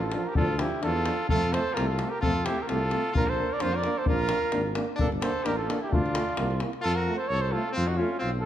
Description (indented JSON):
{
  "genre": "balkan folk, Balkan brass band",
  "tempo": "130 BPM",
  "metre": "2/4",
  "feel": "swing 54% on 16ths",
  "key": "D minor",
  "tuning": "A4 = 440 Hz",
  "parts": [
    { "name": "mellow cornet", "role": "melody", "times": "0.0-8.5 s", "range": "F4 to D5", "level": "-29 LUFS", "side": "right 2 dB", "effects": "none" },
    { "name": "clear trumpet", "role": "second line", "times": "0.0-8.5 s", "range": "C4 to Bb4", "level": "-34 LUFS", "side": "left 2 dB", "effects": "none" },
    { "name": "mellow tuba", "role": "bass", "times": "0.0-8.5 s", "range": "G1 to F2", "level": "-31 LUFS", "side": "equal", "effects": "none" },
    { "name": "dark French horn", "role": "accompaniment", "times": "0.1-8.1 s", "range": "C4 to F4", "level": "-35 LUFS", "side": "left 4 dB", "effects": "none" },
    { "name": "davul", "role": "percussion", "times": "0.1-6.8 s", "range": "none", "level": "-31 LUFS", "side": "left 2 dB", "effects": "none" },
    { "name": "warm trombone", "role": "accompaniment", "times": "0.2-8.1 s", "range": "F3 to Bb3", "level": "-35 LUFS", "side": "right 4 dB", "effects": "none" }
  ],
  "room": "moderate recital hall reverb, RT60 1.4 s",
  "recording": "dark, warm production",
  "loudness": "-24 LUFS",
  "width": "side -11 dB against mid",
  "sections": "0.0-6.8 A section; 6.8-8.5 B section",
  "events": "none",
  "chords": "0.0 Dm; 1.3 F; 3.1 Bb; 5.0 Gm; 5.9 Dm; 6.4 C7; 6.8 F"
}